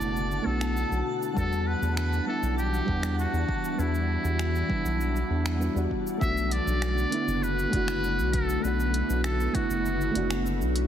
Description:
sunset chillout; 99 BPM; 4/4; straight; A4 = 439 Hz
trumpet with metal mute; melody; 0.0-10.5 s; E4 to E5; -32 LUFS; equal; digital delay
mellow FM electric piano; accompaniment; 0.0-10.9 s; G3 to F#5; -31 LUFS; moving between left 6 dB and right 3 dB; chorus, auto-pan, vintage 12-bit sampler grit, digital delay
ethereal airy pad; sustained chords; 0.0-10.9 s; B2 to F#5; -34 LUFS; right 1 dB; ensemble chorus, built-in reverb
round analog bass; bass; 0.0-10.9 s; F#1 to E2; -28 LUFS; equal; tube saturation
deep house drum kit; drums; 0.0-10.9 s; finger snaps, hi-hat, shaker; -38 LUFS; equal
twinkling granular texture; texture; 0.0-6.2 s; A5; -40 LUFS; left 1 dB; built-in reverb
electronic kick drum; drums; 1.4-9.7 s; -31 LUFS; equal
light reverb, digital ambience; heavily compressed radio sound, multiband compression; -24 LUFS; side -10 dB against mid
0.0-6.2 A section; 6.2-10.9 B section
0.0 Bm7; 1.4 Em9; 6.2 Bm7

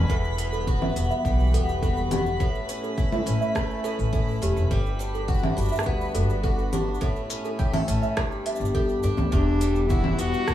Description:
folktronica; 104 BPM; 4/4; straight; A mixolydian; A4 = 440 Hz
picked twelve-string acoustic guitar; arpeggios; 0.0-10.5 s; E2 to A4; -31 LUFS; left 2 dB; digital delay
upright bass; bass; 0.0-10.5 s; E1 to G2; -26 LUFS; equal
twinkling granular texture; texture; 0.0-9.3 s; B4 to B5; -37 LUFS; right 2 dB; built-in reverb
small celesta; second line; 0.1-9.3 s; G4 to E5; -31 LUFS; right 1 dB; digital delay
warm analog pad; sustained chords; 0.5-10.5 s; E3 to F#5; -33 LUFS; left 1 dB; chorus
electronic kick drum; drums; 0.1-10.5 s; -26 LUFS; equal
organic electronic drum kit; drums; 0.1-10.5 s; cabasa, congas, hi-hat, rim click; -30 LUFS; equal
warm cello; melody; 9.3-10.5 s; D4 to F#4; -28 LUFS; left 1 dB; digital delay
light reverb, studio reverb; small room ambience; -22 LUFS; side -12 dB against mid
0.0-9.3 A section; 9.3-10.5 B section
0.1 Emadd9; 2.4 A; 4.7 Gmaj7; 7.0 A; 8.2 G; 9.3 Emadd9

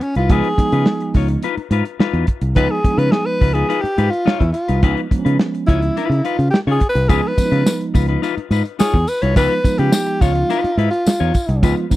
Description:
funk; 106 BPM; 4/4; straight; Db mixolydian; A4 = 440 Hz
breathy alto saxophone; melody; 0.0-11.7 s; Db4 to Db5; -20 LUFS; equal
mellow electric guitar; accompaniment; 0.0-12.0 s; Eb4 to Db5; -24 LUFS; left 10 dB; spring reverb
warm soul drum kit; drums; 0.0-12.0 s; hi-hat, kick drum, snare drum; -15 LUFS; equal
fingered electric bass; bass; 0.2-11.9 s; C2 to Db3; -17 LUFS; equal
mellow tine electric piano; stabs; 0.3-12.0 s; F3 to F4; -22 LUFS; right 4 dB
tambourine; percussion; 7.1-12.0 s; -32 LUFS; left 4 dB
little or no reverb; dry, close 1970s-style studio recording; -14 LUFS; side -16 dB against mid
0.0-12.0 A section
alto saxophone solo 0.0-12.0
0.0 Db9

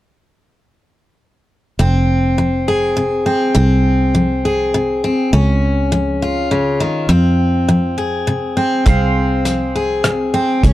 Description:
honky-tonk and classic country; 102 BPM; 3/4; straight; F minor; A4 = 440 Hz
picked steel-string acoustic guitar; accompaniment; 1.8-10.7 s; F2 to Ab4; -15 LUFS; left 1 dB
fingered electric bass; bass; 1.8-10.7 s; F1 to F2; -17 LUFS; right 1 dB
pedal steel guitar; sustained chords; 8.9-10.6 s; Ab4 to F5; -24 LUFS; right 3 dB; wide subtle chorus
cloth-damped thuddy drum kit; drums; 8.9-10.7 s; hi-hat, kick drum, rim click; -13 LUFS; right 1 dB
little or no reverb; -13 LUFS; side -15 dB against mid
1.8-10.7 A section
1.8 Fm; 5.3 Db; 7.1 Fm

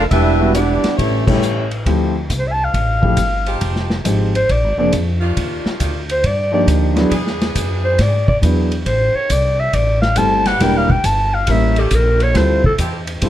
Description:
jazz, big band swing; 137 BPM; 4/4; swing 66% on 8ths; D minor; A4 = 438 Hz
mellow saxophone section; melody; 0.0-1.7 s; A3 to E5; -18 LUFS; left 1 dB
bright trombone section; second line; 0.0-1.7 s; E3 to E4; -21 LUFS; right 5 dB
upright bass; bass; 0.0-13.3 s; E1 to G#2; -18 LUFS; equal
vintage drum kit; drums; 0.1-13.3 s; crash cymbal, hi-hat, kick drum, ride cymbal, snare drum; -21 LUFS; equal
warm grand piano; accompaniment; 0.4-13.3 s; F3 to Bb4; -19 LUFS; equal
growling clarinet; melody; 2.4-12.7 s; G4 to A5; -18 LUFS; equal
edgy saxophone section; sustained chords; 3.5-13.0 s; Eb3 to A4; -26 LUFS; equal
light reverb; dark, warm production; -14 LUFS; side -12 dB against mid
0.0-1.9 A section; 1.9-13.3 B section
band accent 1.2; clarinet solo 1.9-13.3
0.1 Em7; 1.0 A7; 1.9 Dm11; 3.6 Fm9; 4.5 Bb7; 5.4 Ebmaj9; 7.1 E7; 8.9 Am7; 10.6 Em7b5; 11.5 A7b9; 12.3 Dm11

